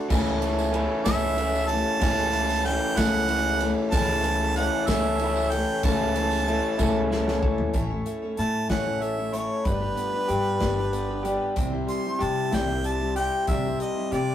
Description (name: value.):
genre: folk rock and heartland rock.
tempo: 63 BPM (dotted quarters).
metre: 6/8.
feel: straight.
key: A mixolydian.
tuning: A4 = 440 Hz.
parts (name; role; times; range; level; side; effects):
picked steel-string acoustic guitar; accompaniment; 0.0-14.3 s; A2 to C#5; -30 LUFS; left 3 dB; none.
hand-pumped harmonium; sustained chords; 0.0-14.3 s; C#4 to C5; -36 LUFS; right 3 dB; none.
electric guitar through a small old amp; riff; 0.0-14.3 s; G2 to G4; -27 LUFS; left 1 dB; none.
upright bass; bass; 0.1-14.3 s; G1 to C3; -31 LUFS; equal; none.
natural country drum kit; drums; 0.1-14.3 s; crash cymbal, hi-hat, kick drum, ride cymbal, snare drum, toms; -30 LUFS; equal; none.
tambourine; percussion; 0.1-6.9 s; none; -42 LUFS; right 3 dB; none.
clear harmonica; melody; 1.1-14.3 s; B4 to C6; -28 LUFS; right 2 dB; none.
room: moderate small room reverb, RT60 0.5 s.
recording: rough rehearsal-room recording, tube saturation.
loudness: -22 LUFS.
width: side -10 dB against mid.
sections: 0.0-7.8 A section; 7.8-14.3 B section.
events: drum fill 6.8-7.8; harmonica solo 7.8-14.3.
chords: 0.1 A/C#; 7.8 A; 9.7 G; 11.6 C.